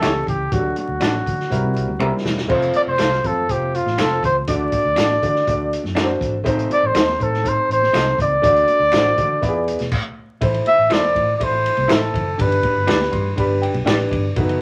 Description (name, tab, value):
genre	uptempo 1960s-style soul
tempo	121 BPM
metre	4/4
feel	straight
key	A minor from 10.4 s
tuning	A4 = 441 Hz
part	breathy trumpet	melody	0.0-13.4 s	F4 to E5	-21 LUFS	equal	none
part	dark grand piano	accompaniment	0.0-14.6 s	E3 to C6	-25 LUFS	equal	none
part	electric guitar through a small old amp	stabs	0.0-14.0 s	A3 to F5	-27 LUFS	equal	none
part	vintage muted fingered electric bass	bass	0.0-14.5 s	E1 to D3	-28 LUFS	equal	none
part	vintage drum kit	drums	0.0-14.6 s	crash cymbal, hi-hat, kick drum, ride cymbal, snare drum	-26 LUFS	equal	none
part	congas	percussion	0.0-14.5 s	none	-37 LUFS	equal	none
part	finger snaps	percussion	0.0-14.0 s	none	-33 LUFS	equal	none
room	moderate club reverb, RT60 0.7 s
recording	vinyl crackle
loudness	-19 LUFS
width	mono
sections	0.0-2.5 A section; 2.5-10.4 B section; 10.4-14.6 C section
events	drum fill 2.0-2.5; stop 9.9-10.4; grand piano fill 12.9-14.4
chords	0.0 A7; 0.5 D; 1.5 C7; 2.5 F; 4.5 D; 6.5 Adim; 8.4 D; 9.4 E7; 10.4 Am; 12.4 G